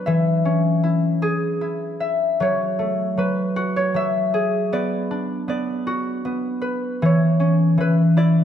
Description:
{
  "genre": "children's music, lullaby",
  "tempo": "78 BPM",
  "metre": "3/4",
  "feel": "straight",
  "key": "unclear",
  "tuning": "A4 = 442 Hz",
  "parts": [
    { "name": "concert harp", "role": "solo", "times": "0.0-8.4 s", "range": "E3 to E5", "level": "-18 LUFS", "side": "equal", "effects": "none" }
  ],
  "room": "moderate scoring stage reverb, RT60 1.6 s",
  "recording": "none",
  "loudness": "-18 LUFS",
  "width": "side -9 dB against mid",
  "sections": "0.0-8.4 A section",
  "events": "none",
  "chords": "0.1 C#m/E; 0.8 E; 2.4 F#madd9; 4.7 Bm; 7.0 C#m/E"
}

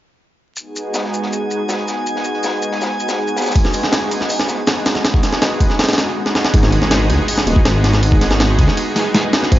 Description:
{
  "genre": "drum and bass, jungle",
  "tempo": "161 BPM",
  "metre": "4/4",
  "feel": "straight",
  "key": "G# minor",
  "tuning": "A4 = 438 Hz",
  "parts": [
    { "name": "lush unison pad", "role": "sustained chords", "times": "0.6-9.6 s", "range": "G#3 to G#4", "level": "-20 LUFS", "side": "equal", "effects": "chorus, vintage 12-bit sampler grit" },
    { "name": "crunchy breakbeat drum kit", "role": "drums", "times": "0.6-6.2 s", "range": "hi-hat, shaker, snare drum", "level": "-25 LUFS", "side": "left 1 dB", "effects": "high-pass filter on hats, high-pass filter on snare, high-pass filter on perc, high-pass filter on room" },
    { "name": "drifting glass-harmonics texture", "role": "texture", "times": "1.0-6.2 s", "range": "G#5 to G#6", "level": "-28 LUFS", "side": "equal", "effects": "chorus, built-in reverb" },
    { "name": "jungle sampler-style drum kit", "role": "drums", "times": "3.6-9.6 s", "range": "hi-hat, kick drum, ride cymbal, snare drum", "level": "-15 LUFS", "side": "equal", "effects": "overdrive" },
    { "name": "detuned saw bass", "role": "bass", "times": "6.5-9.6 s", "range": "D#1 to D#2", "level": "-15 LUFS", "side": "equal", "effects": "none" },
    { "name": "impact", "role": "sound effects", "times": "6.5-8.0 s", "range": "none", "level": "-26 LUFS", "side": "equal", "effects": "none" }
  ],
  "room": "light reverb, studio reverb",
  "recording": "dry, gritty hardware recording, vinyl crackle, nothing above 7.5 kHz",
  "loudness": "-14 LUFS",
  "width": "side -14 dB against mid",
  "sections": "0.6-6.5 A section; 6.5-9.6 B section",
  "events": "filter sweep on analog synth pad 0.6-6.5; drum fill 6.3; drop 6.5-9.6; impact 6.5-8.0",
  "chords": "0.6 G#m7"
}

